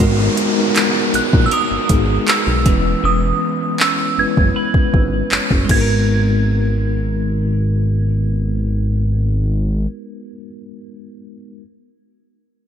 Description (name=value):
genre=contemporary R&B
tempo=79 BPM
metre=4/4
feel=straight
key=G# minor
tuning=A4 = 440 Hz
part: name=mellow tine electric piano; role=accompaniment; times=0.0-11.6 s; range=G#3 to B4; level=-21 LUFS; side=left 2 dB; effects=medium stereo tremolo, low-pass filter
part: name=clean electric guitar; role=arpeggios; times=0.0-10.5 s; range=E3 to B4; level=-26 LUFS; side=right 5 dB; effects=analog chorus, low-pass filter, ping-pong delay
part: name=fat analog bass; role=bass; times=0.0-9.9 s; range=E1 to B1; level=-17 LUFS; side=equal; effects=none
part: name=smooth R&B drum kit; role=drums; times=0.0-5.9 s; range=crash cymbal, handclaps, hi-hat, kick drum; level=-17 LUFS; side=equal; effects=gated reverb
part: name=downlifter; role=sound effects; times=0.0-6.1 s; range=none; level=-25 LUFS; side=equal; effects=none
part: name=glassy synth bell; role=melody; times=1.2-10.4 s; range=D#6 to G#6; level=-21 LUFS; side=right 4 dB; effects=chorus, tremolo, low-pass filter, ping-pong delay
room=light reverb, digital ambience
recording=bright 1980s-style digital production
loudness=-14 LUFS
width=side -8 dB against mid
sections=0.0-6.1 A section; 6.1-9.1 B section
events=filter sweep 0.0-6.1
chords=0.0 G#m9; 2.7 E6; 5.7 G#m9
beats=| 0.00 0.76 1.52 2.28 | 3.04 3.80 4.55 5.32 | 6.07 6.83 7.59 8.35